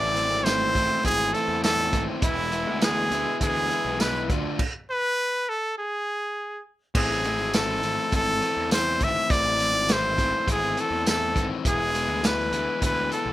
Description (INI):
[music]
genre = indie rock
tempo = 102 BPM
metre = 4/4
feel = straight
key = A harmonic minor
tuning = A4 = 439 Hz
[part]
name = bright trumpet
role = melody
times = 0.0-13.3 s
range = E4 to E5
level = -24 LUFS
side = equal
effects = none
[part]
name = overdriven electric guitar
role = riff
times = 0.0-13.3 s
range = A2 to F4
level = -30 LUFS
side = left 7 dB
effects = none
[part]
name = overdriven electric guitar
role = riff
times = 0.0-4.6 s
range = A2 to F4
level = -33 LUFS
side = right 8 dB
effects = lush chorus, slapback echo
[part]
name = fuzz picked electric bass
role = bass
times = 0.0-13.3 s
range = E1 to E2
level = -32 LUFS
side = equal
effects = overdrive
[part]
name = vintage drum kit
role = drums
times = 0.2-13.3 s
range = crash cymbal, hi-hat, kick drum, snare drum, tambourine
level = -26 LUFS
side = right 1 dB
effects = none
[sound]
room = light reverb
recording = rough home demo mix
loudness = -22 LUFS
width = side -14 dB against mid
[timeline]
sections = 0.0-6.9 A section; 6.9-13.3 A section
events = stop 4.6-6.9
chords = 0.0 Am; 2.2 E; 4.3 Dm; 5.8 N.C.; 6.9 Am; 11.7 E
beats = 0.46 1.05 1.64 | 2.23 2.82 3.41 4.00 | 4.59 5.18 5.77 6.36 | 6.95 7.54 8.13 8.71 | 9.30 9.89 10.48 11.06 | 11.65 12.24 12.83